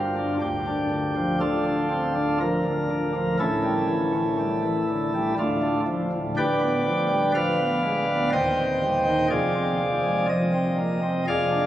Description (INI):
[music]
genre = classical, chorale-style piece for pipe organ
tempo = 61 BPM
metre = 3/4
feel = rubato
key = unclear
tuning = A4 = 440 Hz
[part]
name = pipe organ, sparkling flutes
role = solo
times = 0.0-11.7 s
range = D1 to G5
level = -21 LUFS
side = equal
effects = none
[sound]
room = wet cathedral reverb, RT60 6.3 s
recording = recorded on a phone in the room, club reverb, compression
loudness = -21 LUFS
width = side -12 dB against mid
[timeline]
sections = 0.0-11.7 A section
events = none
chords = 0.4 Dm; 3.4 A7; 5.4 Dm; 6.4 G7/D; 8.3 Cm/Eb; 9.3 Fm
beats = | 0.42 1.41 2.41 | 3.40 4.40 5.38 | 6.36 7.34 8.32 | 9.30 10.29 11.28